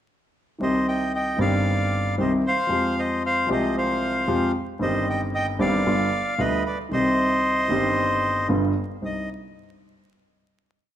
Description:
tango; 114 BPM; 4/4; rubato; C minor; A4 = 440 Hz
bandoneon; melody; 0.6-9.3 s; B4 to G5; -24 LUFS; equal
warm concert grand piano; accompaniment; 0.6-9.3 s; G1 to G4; -23 LUFS; equal
moderate scoring stage reverb, RT60 1.9 s; minimal, uncompressed stereo recording, vinyl crackle; -20 LUFS; side -11 dB against mid
0.6-9.0 A section; 9.0-11.0 final chord
0.6 Cm; 2.7 Fmadd9; 4.8 Cm/G; 5.9 G7; 6.9 Cm; 8.5 G7; 9.0 Cm

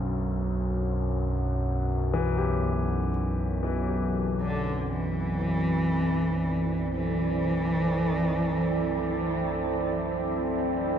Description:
dark ambient drone; free time; A4 = 440 Hz
clear concert grand piano; arpeggios; 0.0-11.0 s; B1 to G4; -35 LUFS; left 4 dB; tape echo
analog drone; drone; 0.0-11.0 s; B1 to F#2; -29 LUFS; equal; chorus
deep dark ambient pad; sustained chords; 4.4-11.0 s; C4 to D5; -30 LUFS; right 2 dB; chorus, built-in reverb
warm cello; melody; 4.4-10.0 s; D3 to E3; -28 LUFS; equal; tape echo
moderate spring reverb, RT60 2.5 s; echo-heavy mix; -25 LUFS; side -8 dB against mid
0.0-11.0 A section
0.0 Cadd9

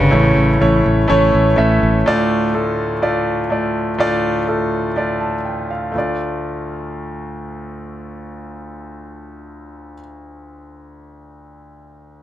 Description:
piano-driven pop; 124 BPM; 4/4; straight; A4 = 440 Hz
warm cello; melody; 0.0-0.8 s; C#3; -18 LUFS; equal; tape echo
clear concert grand piano; accompaniment; 0.0-12.2 s; D2 to A5; -18 LUFS; equal
fingered electric bass; bass; 0.0-2.0 s; A1; -16 LUFS; equal
moderate large studio reverb, RT60 0.9 s, small room ambience; -14 LUFS; side -12 dB against mid
0.0-2.1 A section; 2.1-5.9 B section; 5.9-9.8 C section
0.1 A; 2.1 Dm

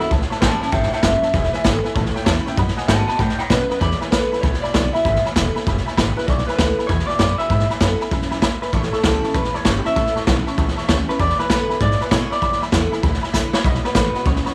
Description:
rockabilly; 195 BPM; 4/4; swing 64% on 8ths; E mixolydian; A4 = 440 Hz
electric guitar through a small old amp; melody; 0.0-14.4 s; E4 to A5; -24 LUFS; equal; tape echo
picked steel-string acoustic guitar; accompaniment; 0.0-14.5 s; E2 to F#4; -30 LUFS; equal
tack piano; accompaniment; 0.0-14.5 s; B4 to D6; -31 LUFS; equal
upright bass; bass; 0.0-14.5 s; E1 to B2; -24 LUFS; equal
raw garage drum kit; drums; 0.0-14.5 s; hi-hat, kick drum, snare drum; -22 LUFS; equal
light reverb, studio reverb; -19 LUFS; mono
0.0-3.8 A section; 3.8-14.5 B section
clean electric guitar solo 0.0-3.8; drum fill 13.3-13.6
0.1 A7; 1.3 E7; 2.0 A7; 2.6 B7; 3.8 E7; 8.7 A7; 11.2 E7; 13.6 B7

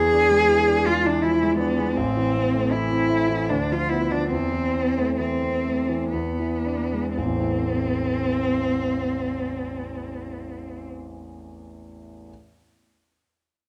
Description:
classical, romantic duo for cello and grand piano; 54-83 BPM; 3/4; rubato; A minor; A4 = 440 Hz
rich cello; melody; 0.0-10.9 s; B3 to G#4; -25 LUFS; equal
warm concert grand piano; accompaniment; 0.0-12.3 s; A1 to E4; -28 LUFS; equal
moderate scoring stage reverb, RT60 1.5 s; close, detailed microphones; -23 LUFS; mono
0.0-7.2 A section; 7.2-10.1 B section
slowing down 0.9-7.2
0.0 E7; 2.0 Am; 3.5 Bdim/D; 4.3 Am/E; 6.1 E7; 7.2 Am

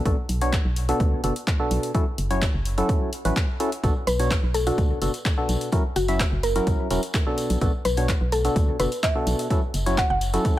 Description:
piano house; 127 BPM; 4/4; straight; B minor; A4 = 437 Hz
percussive organ stab; riff; 0.0-10.6 s; B2 to E5; -26 LUFS; equal; chorus, sidechain pumping, dub echo
organ-like FM bass; bass; 0.1-10.4 s; E1 to D2; -25 LUFS; equal; sidechain pumping
electronic kick drum; drums; 0.1-10.5 s; -24 LUFS; equal; overdrive, studio reverb
punchy analog drum machine; drums; 0.1-10.5 s; handclaps, hi-hat; -32 LUFS; left 1 dB; overdrive, studio reverb
tambourine; percussion; 3.8-10.6 s; -40 LUFS; equal
mallet-like synth pluck; melody; 4.1-10.2 s; F#4 to F#5; -28 LUFS; left 1 dB; chorus, dub echo
little or no reverb; -21 LUFS; side -14 dB against mid
0.0-10.6 A section
0.0 Bm7; 1.9 F#m7; 3.8 Bm7; 5.7 F#7; 7.4 Bm7; 9.5 F#m7

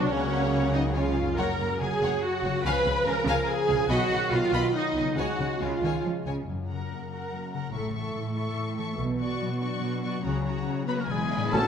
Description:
cinematic, heroic adventure film score; 142 BPM; 3/4; straight; F# major; A4 = 440 Hz
dark symphonic violin section; melody; 0.0-11.7 s; C#5 to C#6; -36 LUFS; left 5 dB
warm symphonic violin section; second line; 0.0-11.7 s; G#4 to B5; -36 LUFS; left 4 dB
rich symphonic viola section; accompaniment; 0.0-11.6 s; E3 to B4; -29 LUFS; right 2 dB
warm trombone section; sustained chords; 0.0-6.2, 11.5-11.7 s; C#3 to C#4; -34 LUFS; right 2 dB
concert harp; arpeggios; 0.0-11.7 s; F#2 to E5; -34 LUFS; left 10 dB
dark symphonic cello section; bass; 0.0-11.7 s; E2 to B3; -32 LUFS; right 2 dB
warm symphonic double bass section; bass; 0.0-11.6 s; E1 to C#2; -33 LUFS; right 2 dB
cymbal swell and tam-tam; percussion; 9.0-11.7 s; -38 LUFS; left 2 dB
warm oboe; second line; 10.9-11.7 s; G#4 to B4; -34 LUFS; equal
clear clarinet; second line; 11.5-11.7 s; C#4; -32 LUFS; left 2 dB
flute section; second line; 11.5-11.7 s; E6; -35 LUFS; right 6 dB
warm French horn section; sustained chords; 11.5-11.7 s; F#4; -30 LUFS; left 3 dB
dark trumpet section; stabs; 11.5-11.7 s; A4; -27 LUFS; equal
mellow tuba; bass; 11.5-11.6 s; A1; -31 LUFS; right 3 dB
moderate concert hall reverb, RT60 2.0 s; -25 LUFS; side -7 dB against mid
0.0-6.5 A section; 6.5-11.5 B section
0.1 F#/C#; 1.0 C#; 1.4 F#; 2.7 C#; 3.9 B; 5.2 C#; 6.5 F#; 7.7 A; 9.0 Bmadd9; 10.2 F#/C#; 11.1 E7

